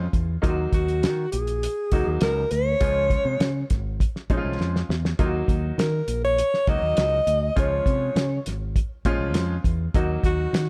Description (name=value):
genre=uptempo 1960s-style soul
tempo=101 BPM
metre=4/4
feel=straight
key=Eb dorian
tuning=A4 = 440 Hz
part: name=bright baby grand piano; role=accompaniment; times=0.0-10.6 s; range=F3 to Gb4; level=-31 LUFS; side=equal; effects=none
part: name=fingered electric bass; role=bass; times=0.0-10.7 s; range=Ab1 to Eb3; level=-29 LUFS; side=equal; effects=none
part: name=cloth-damped thuddy drum kit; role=drums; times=0.1-10.7 s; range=hi-hat, kick drum, snare drum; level=-27 LUFS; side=equal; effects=none
part: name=breathy alto saxophone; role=melody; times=0.7-10.7 s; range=Gb4 to Eb5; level=-26 LUFS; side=equal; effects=slapback echo
room=light reverb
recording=dark, warm production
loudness=-23 LUFS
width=mono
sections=0.0-10.7 A section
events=drum fill 4.6-5.2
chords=0.4 Ebm; 2.8 Db; 5.2 Ebm; 7.6 Db; 9.9 Ebm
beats=| 0.43 1.03 1.62 2.22 | 2.81 3.41 4.00 4.60 | 5.19 5.79 6.38 6.97 | 7.57 8.16 8.76 9.35 | 9.94 10.54